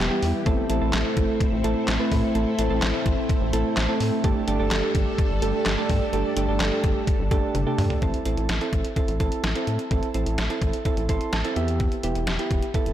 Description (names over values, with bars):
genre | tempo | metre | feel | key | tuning
synth-pop | 127 BPM | 4/4 | straight | A minor | A4 = 441 Hz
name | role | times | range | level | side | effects
string machine, full ensemble | sustained chords | 0.0-8.0 s | E3 to A4 | -29 LUFS | left 1 dB | ensemble chorus, shimmer reverb
rubbery square bass | bass | 0.0-12.9 s | E1 to A2 | -26 LUFS | equal | none
soft electric-piano-like synth keys | accompaniment | 0.1-12.9 s | G3 to C6 | -26 LUFS | right 2 dB | chorus, shimmer reverb
detuned 8-bit digital drum machine | drums | 0.2-12.9 s | handclaps, hi-hat, kick drum, snare drum, toms | -25 LUFS | equal | none
room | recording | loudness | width
light reverb | blown-out, overdriven recording, overdrive | -21 LUFS | side -11 dB against mid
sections
0.0-8.0 A section; 8.0-12.9 B section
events
drum fill 7.5-8.0; synth keys fill 10.9-11.8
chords
0.5 Am; 4.2 Gsus2; 8.0 Am; 11.6 Em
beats
| 0.46 0.93 1.41 1.88 | 2.35 2.82 3.30 3.77 | 4.24 4.71 5.19 5.66 | 6.13 6.60 7.08 7.55 | 8.02 8.49 8.97 9.44 | 9.91 10.38 10.86 11.33 | 11.80 12.27 12.74